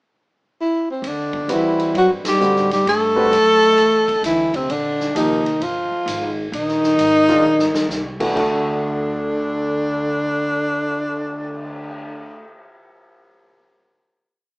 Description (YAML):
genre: modal jazz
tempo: 131 BPM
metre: 4/4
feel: swing 66% on 8ths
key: D mixolydian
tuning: A4 = 440 Hz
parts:
  - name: breathy tenor saxophone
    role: melody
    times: 0.6-12.4 s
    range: C4 to A4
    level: -17 LUFS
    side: equal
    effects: none
  - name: upright bass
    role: bass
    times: 1.0-12.4 s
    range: F1 to A2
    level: -34 LUFS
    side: equal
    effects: none
  - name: swinging big-band drum kit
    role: drums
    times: 1.0-11.9 s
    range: crash cymbal, cymbal swell, hi-hat, kick drum, ride cymbal, snare drum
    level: -29 LUFS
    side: equal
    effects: none
  - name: mellow bass clarinet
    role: second line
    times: 1.1-12.4 s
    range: C3 to A3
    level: -26 LUFS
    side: equal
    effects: none
  - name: warm concert grand piano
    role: accompaniment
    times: 1.5-12.4 s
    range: D2 to B4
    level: -23 LUFS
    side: equal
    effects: none
room: light reverb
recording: band playing live in one room, small speaker sound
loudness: -16 LUFS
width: side -26 dB against mid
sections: 0.0-1.0 pickup bar; 1.0-8.4 A section; 8.4-12.0 final chord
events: band accent 2.2; drum fill 7.4-7.9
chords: 0.0 N.C.; 1.0 D9sus4; 4.7 Bb9sus4; 8.4 D